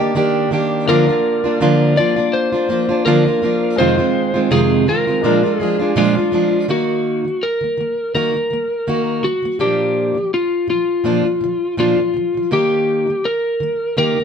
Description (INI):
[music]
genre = acoustic pop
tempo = 82 BPM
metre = 4/4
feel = swing 55% on 16ths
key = Bb mixolydian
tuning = A4 = 440 Hz
[part]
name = clear upright piano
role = accompaniment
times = 0.0-6.7 s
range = D3 to D5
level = -25 LUFS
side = left 5 dB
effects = none
[part]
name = fingerpicked plugged-in steel-string acoustic guitar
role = accompaniment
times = 0.0-14.2 s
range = F2 to G4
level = -17 LUFS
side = right 2 dB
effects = none
[part]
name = electric slide guitar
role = melody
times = 0.9-14.2 s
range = F4 to D5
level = -18 LUFS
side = left 1 dB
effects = none
[sound]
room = moderate studio reverb, RT60 0.8 s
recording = band playing live in one room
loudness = -14 LUFS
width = side -7 dB against mid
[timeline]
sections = 0.0-6.7 A section; 6.7-14.2 B section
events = none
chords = 0.0 Ebmaj7; 0.9 Bb/D; 3.8 Fm7; 5.2 Bb7; 6.7 Ebm; 9.6 Bb; 12.5 Eb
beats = 0.16 | 0.88 1.61 2.33 3.06 | 3.79 4.51 5.24 5.96 | 6.69 7.42 8.14 8.87 | 9.60 10.33 11.06 11.78 | 12.51 13.24 13.97